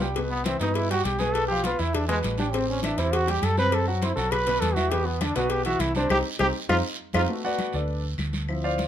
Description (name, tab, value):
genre	Afro-Cuban jazz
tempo	202 BPM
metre	4/4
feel	straight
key	unclear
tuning	A4 = 442 Hz
part	brilliant trombone	melody	0.0-7.2 s	Ab3 to B4	-26 LUFS	equal	none
part	warm grand piano	accompaniment	0.0-8.9 s	B2 to C6	-28 LUFS	equal	none
part	hollow-body short-scale fingered electric bass	bass	0.0-8.9 s	A1 to G2	-28 LUFS	equal	none
part	congas	percussion	0.0-8.9 s	none	-34 LUFS	left 2 dB	none
part	guiro	percussion	0.0-8.9 s	none	-38 LUFS	right 5 dB	none
part	cowbell	percussion	0.2-7.2 s	none	-34 LUFS	left 5 dB	none
part	claves	percussion	2.8-8.6 s	none	-37 LUFS	left 6 dB	none
room	light reverb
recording	minimal, uncompressed stereo recording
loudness	-22 LUFS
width	side -10 dB against mid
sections	0.0-7.3 A section; 7.3-8.9 A section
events	trombone solo 0.0-7.3; band accent 6.1-7.3; drum fill 6.8-7.3; grand piano solo 7.3-8.9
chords	0.2 Cmaj7; 1.3 G13/B; 1.9 E5; 2.5 Am7; 3.7 Am69; 4.3 B5; 4.9 E5; 6.1 Cm; 6.7 F5; 7.3 D6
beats	| 0.16 0.46 0.75 1.05 | 1.35 1.65 1.94 2.24 | 2.54 2.83 3.13 3.43 | 3.73 4.02 4.32 4.62 | 4.92 5.21 5.51 5.81 | 6.10 6.40 6.70 7.00 | 7.29 7.59 7.89 8.19 | 8.49 8.78